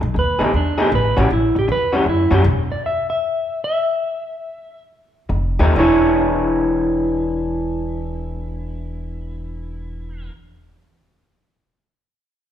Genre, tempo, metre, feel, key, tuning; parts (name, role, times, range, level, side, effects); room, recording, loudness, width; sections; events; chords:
electric blues shuffle; 126-158 BPM; 4/4; swing 66% on 8ths; E mixolydian; A4 = 440 Hz
electric guitar through a small old amp; riff; 0.0-2.5, 5.3-10.3 s; A2 to C#5; -21 LUFS; left 1 dB
upright bass; bass; 0.0-2.7, 5.3-10.3 s; E1 to F#2; -22 LUFS; equal
clean lap steel guitar; melody; 0.2-10.3 s; D4 to E5; -20 LUFS; equal
moderate large studio reverb, RT60 1.4 s; band playing live in one room; -16 LUFS; side -10 dB against mid
0.0-5.8 A section; 5.8-9.6 B section
slowing down 2.4-5.8; stop 2.4-5.3
0.0 B6; 0.9 A6; 2.4 N.C.; 5.3 F9; 5.8 E6